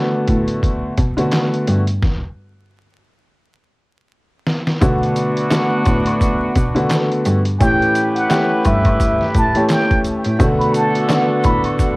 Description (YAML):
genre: hip hop, boom-bap hip-hop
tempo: 86 BPM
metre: 4/4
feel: swing 58% on 16ths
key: B minor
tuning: A4 = 440 Hz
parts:
  - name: clear upright piano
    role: accompaniment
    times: 0.0-12.0 s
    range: D3 to G4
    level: -18 LUFS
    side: equal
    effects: cassette tape, high-pass filter, low-pass filter, plate reverb
  - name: rich cello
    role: bass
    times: 0.3-12.0 s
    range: G2 to B2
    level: -20 LUFS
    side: equal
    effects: none
  - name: trip hop sampler-style drum kit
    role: drums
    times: 0.3-12.0 s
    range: handclaps, hi-hat, kick drum, snare drum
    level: -19 LUFS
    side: equal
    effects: cassette tape
  - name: warm horn section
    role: stabs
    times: 4.8-12.0 s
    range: B3 to B4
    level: -23 LUFS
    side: right 1 dB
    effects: high-pass filter, low-pass filter, plate reverb, tape echo
  - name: tube shaker and woodblock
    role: percussion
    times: 4.8-12.0 s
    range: none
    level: -32 LUFS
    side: left 2 dB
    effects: none
  - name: trumpet with plunger mute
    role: melody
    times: 7.6-11.6 s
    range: E5 to B5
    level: -19 LUFS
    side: equal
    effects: high-pass filter, low-pass filter, plate reverb, tape echo
room: moderate booth ambience, RT60 0.3 s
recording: home recording on cassette, vinyl crackle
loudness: -14 LUFS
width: side -23 dB against mid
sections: 0.0-4.8 A section; 4.8-12.0 B section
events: break 0.0-4.8; stop 2.0-4.8; drum fill 3.4-4.8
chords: 0.0 Bm7; 2.0 N.C.; 4.8 Bm7; 7.6 A7; 10.4 Bm7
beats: 0.63 1.33 | 2.02 2.72 3.42 4.12 | 4.82 5.51 6.21 6.91 | 7.61 8.30 9.00 9.70 | 10.40 11.09 11.79